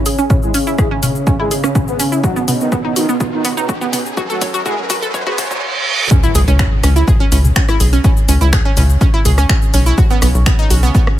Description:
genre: melodic techno.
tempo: 124 BPM.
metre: 4/4.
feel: straight.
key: C# minor.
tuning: A4 = 440 Hz.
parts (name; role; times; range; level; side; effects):
analog synth brass; melody; 0.0-5.6 s; F#3 to B4; -22 LUFS; right 1 dB; chorus, sidechain pumping, digital delay.
soft supersaw; second line; 0.0-5.6 s; F#2 to B3; -26 LUFS; right 1 dB; phaser, sidechain pumping, low-pass filter, digital delay.
analog drone; drone; 0.0-11.2 s; C#3 to C#4; -28 LUFS; equal; chorus, sidechain pumping.
riser, reverse cymbal and impact; sound effects; 1.4-8.0 s; none; -22 LUFS; right 1 dB; none.
analog pluck; arpeggios; 0.1-11.0 s; B3 to C#5; -20 LUFS; right 2 dB; chorus, sidechain pumping, digital delay.
house drum kit; drums; 0.1-11.2 s; finger snaps, hi-hat, rim click, shaker, toms; -20 LUFS; left 2 dB; sidechain pumping on perc, sidechain pumping on hats, sidechain pumping on toms.
electronic kick drum; drums; 0.3-11.0 s; none; -14 LUFS; equal; none.
tight sequencer bass; bass; 6.3-10.9 s; B1 to C#2; -12 LUFS; equal; sidechain pumping.
room: little or no reverb.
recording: high-pass filter.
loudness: -11 LUFS.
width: side -13 dB against mid.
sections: 0.0-6.1 A section; 6.1-11.2 B section.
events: build-up 0.0-6.1; filter sweep on synth arpeggio sound 0.0-6.1; filter sweep on analog polysynth 0.0-6.1; filter sweep on supersaw synth 0.0-6.1; filter sweep 0.0-6.1; riser 1.4-5.6; drum fill 2.2-5.6; reverse cymbal 5.1-6.1; drop 6.1-11.2; impact 6.1-8.0.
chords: 0.0 C#m; 2.2 B; 4.2 F#m; 6.1 C#m; 10.0 B.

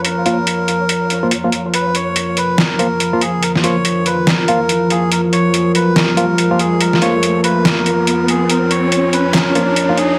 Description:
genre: deep dubstep.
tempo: 142 BPM.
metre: 4/4.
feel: swing 61% on 16ths, half-time.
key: Bb phrygian.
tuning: A4 = 439 Hz.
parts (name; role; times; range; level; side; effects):
dark analog pad; sustained chords; 0.0-10.2 s; F3 to Bb5; -19 LUFS; equal; lush chorus.
trip hop sampler-style drum kit; drums; 0.0-10.1 s; handclaps, hi-hat, snare drum; -19 LUFS; equal; overdrive.
flickering grainy texture; texture; 0.0-1.7 s; Db5; -34 LUFS; equal; built-in reverb.
melodica; melody; 0.1-10.2 s; Ab4 to Db5; -22 LUFS; equal; dub echo.
barky tine electric piano; stabs; 0.3-10.0 s; F3 to F4; -23 LUFS; equal; phaser, dub echo.
riser; sound effects; 4.1-10.2 s; none; -24 LUFS; equal; none.
room: moderate echo chamber reverb, RT60 1.6 s.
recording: heavily compressed radio sound, vinyl crackle.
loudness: -15 LUFS.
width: mono.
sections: 0.0-1.7 A section; 1.7-10.2 B section.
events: build-up 1.7-10.2; riser 4.1-10.2.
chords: 0.0 Bb5.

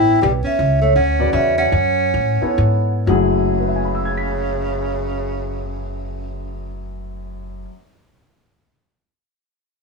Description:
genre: jazz, small-group swing and bop.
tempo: 116-166 BPM.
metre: 3/4.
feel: swing 64% on 8ths.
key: F# minor.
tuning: A4 = 440 Hz.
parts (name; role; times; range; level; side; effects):
vibraphone with soft mallets; melody; 0.0-7.6 s; B4 to G5; -21 LUFS; left 1 dB; none.
mellow tenor saxophone; second line; 0.0-6.9 s; C#3 to E4; -22 LUFS; right 4 dB; none.
warm grand piano; accompaniment; 0.0-7.9 s; F#2 to B6; -23 LUFS; left 3 dB; none.
upright bass; bass; 0.0-7.6 s; F#1 to A2; -22 LUFS; equal; none.
room: light reverb.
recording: none.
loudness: -16 LUFS.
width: side -3 dB against mid.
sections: 0.0-3.1 A section; 3.1-6.2 B section.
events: slowing down 0.6-3.1.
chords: 0.0 G69; 0.6 F#m9.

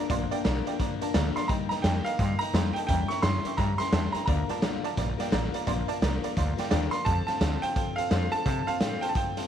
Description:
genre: rockabilly.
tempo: 172 BPM.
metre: 4/4.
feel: swing 62% on 8ths.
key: Bb major.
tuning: A4 = 443 Hz.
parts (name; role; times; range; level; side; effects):
picked steel-string acoustic guitar; accompaniment; 0.0-9.5 s; Bb2 to Bb4; -33 LUFS; left 14 dB; none.
tack piano; accompaniment; 0.0-9.5 s; C5 to C#6; -35 LUFS; right 13 dB; none.
upright bass; bass; 0.1-9.4 s; A1 to C3; -29 LUFS; equal; none.
raw garage drum kit; drums; 0.1-9.4 s; hi-hat, kick drum, snare drum; -29 LUFS; equal; none.
bright upright piano; melody; 1.4-9.5 s; F5 to C#6; -31 LUFS; right 2 dB; none.
room: light reverb, small room ambience.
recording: 1960s-style stereo with parts hard left and right.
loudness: -25 LUFS.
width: side -9 dB against mid.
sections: 0.0-9.5 A section.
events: none.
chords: 0.0 Bb; 1.5 Eb; 2.9 Edim7; 4.3 Bb; 7.1 F.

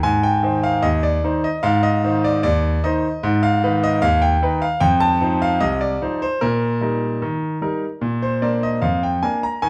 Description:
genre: ragtime piano.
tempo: 75 BPM.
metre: 2/4.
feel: straight.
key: unclear.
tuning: A4 = 443 Hz.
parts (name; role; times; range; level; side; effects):
bright concert grand piano; solo; 0.0-9.7 s; C2 to Bb5; -19 LUFS; equal; none.
room: wet large studio reverb, RT60 1.0 s.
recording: band playing live in one room.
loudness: -19 LUFS.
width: mono.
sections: 0.0-9.7 A section.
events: none.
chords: 0.0 Ab; 3.2 Abm; 4.8 F5; 6.4 Eb/Bb; 8.0 Bb.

